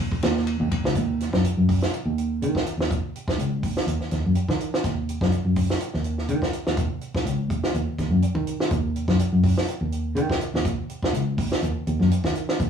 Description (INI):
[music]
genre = afrobeat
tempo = 124 BPM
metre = 4/4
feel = straight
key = Eb minor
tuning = A4 = 440 Hz
[part]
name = compact cocktail drum kit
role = drums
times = 0.1-12.7 s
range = hi-hat, kick drum, ride cymbal, snare drum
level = -26 LUFS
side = equal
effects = none
[part]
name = fingered electric bass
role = bass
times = 0.2-12.7 s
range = Db2 to Eb3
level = -23 LUFS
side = equal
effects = none
[sound]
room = wet studio ambience, RT60 0.5 s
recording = rough rehearsal-room recording, warm saturation, studio reverb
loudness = -22 LUFS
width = side -7 dB against mid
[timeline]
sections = 1.0-12.7 A section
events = none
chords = none